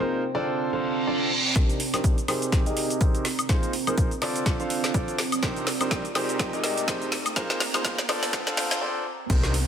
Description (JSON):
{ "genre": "piano house", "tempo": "124 BPM", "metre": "4/4", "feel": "swing 57% on 16ths", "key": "unclear", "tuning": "A4 = 439 Hz", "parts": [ { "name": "clear concert grand piano", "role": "riff", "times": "0.0-9.5 s", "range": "C3 to F5", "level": "-28 LUFS", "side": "equal", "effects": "sidechain pumping, low-pass filter, dub echo" }, { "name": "garage drum kit", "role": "drums", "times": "0.0-9.7 s", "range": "crash cymbal, hi-hat, shaker, snare drum, woodblock", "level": "-28 LUFS", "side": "left 1 dB", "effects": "overdrive, high-pass filter on perc, low-pass filter on perc, high-pass filter on snare, low-pass filter on snare, high-pass filter on hats, low-pass filter on hats, high-pass filter on cymbals, low-pass filter on cymbals" }, { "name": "deep dark ambient pad", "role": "texture", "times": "0.0-9.7 s", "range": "C4 to Bb5", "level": "-32 LUFS", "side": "right 3 dB", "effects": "chorus, built-in reverb, sidechain pumping" }, { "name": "reverse cymbal, riser and downlifter", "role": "sound effects", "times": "0.8-9.7 s", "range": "none", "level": "-33 LUFS", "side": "right 2 dB", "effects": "none" }, { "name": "electronic kick drum", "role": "drums", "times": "1.6-9.4 s", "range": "none", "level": "-24 LUFS", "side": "equal", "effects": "none" }, { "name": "plucky analog bass", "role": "bass", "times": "9.3-9.7 s", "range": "C2", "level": "-25 LUFS", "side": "equal", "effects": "sidechain pumping" } ], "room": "moderate lush hall reverb, RT60 1.9 s", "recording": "high-pass filter", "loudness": "-23 LUFS", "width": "side -8 dB against mid", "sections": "0.0-1.6 A section; 1.6-9.3 B section", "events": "reverse cymbal 0.8-1.6; build-up 1.6-9.3; drum fill 1.6-8.8; riser 1.6-8.8; filter sweep on grand piano 1.6-9.3; filter sweep 1.6-9.3; break 8.8-9.3", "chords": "0.3 Dm7; 1.6 Cm9; 2.5 Abmaj9/C; 3.5 Bb9sus4; 4.2 Dm7; 5.4 Cm9; 6.4 Abmaj9/C; 7.4 Bb9sus4; 8.1 Dm7", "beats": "0.10 0.59 1.07 | 1.56 2.04 2.52 3.01 | 3.49 3.98 4.46 4.94 | 5.43 5.91 6.40 6.88 | 7.36 7.85 8.33 8.81 | 9.30" }